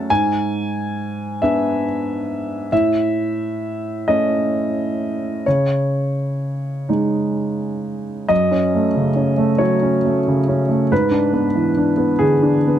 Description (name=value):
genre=neoclassical minimalist piano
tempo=42-46 BPM (dotted quarters)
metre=6/8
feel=rubato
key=unclear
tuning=A4 = 439 Hz
part: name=clear upright piano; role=solo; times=0.0-12.8 s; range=F#2 to A5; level=-16 LUFS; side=equal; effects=none
room=little or no reverb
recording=dry, close 1970s-style studio recording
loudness=-17 LUFS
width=side -10 dB against mid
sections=0.0-8.3 A section; 8.3-12.8 A section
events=none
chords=0.1 G#dim; 2.7 A; 5.5 C#sus2; 8.3 F#m; 10.9 E7/G#